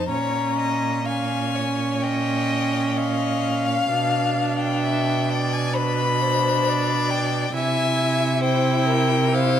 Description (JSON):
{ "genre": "classical, slow romantic movement for string quartet", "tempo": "62-69 BPM", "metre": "4/4", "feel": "rubato", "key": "unclear", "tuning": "A4 = 440 Hz", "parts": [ { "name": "rich violin", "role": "melody", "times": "0.0-9.6 s", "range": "Eb5 to B5", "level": "-25 LUFS", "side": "left 7 dB", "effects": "none" }, { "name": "clear violin", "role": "second line", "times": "0.0-9.6 s", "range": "Bb4 to F5", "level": "-26 LUFS", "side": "left 3 dB", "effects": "none" }, { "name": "clear viola", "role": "accompaniment", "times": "0.0-9.6 s", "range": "Db4 to E4", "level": "-26 LUFS", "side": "right 3 dB", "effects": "none" }, { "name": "clear cello", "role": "bass", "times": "0.0-9.6 s", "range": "Bb2 to C3", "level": "-25 LUFS", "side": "right 4 dB", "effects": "none" } ], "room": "moderate recital hall reverb, RT60 1.7 s", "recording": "close, detailed microphones", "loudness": "-19 LUFS", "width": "side -9 dB against mid", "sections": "0.0-9.6 A section", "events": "none", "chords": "0.1 Bbm7; 3.9 Bdim; 7.5 C", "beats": "| 0.11 1.07 2.03 2.98 | 3.90 4.83 5.76 6.67 | 7.54 8.43 9.34" }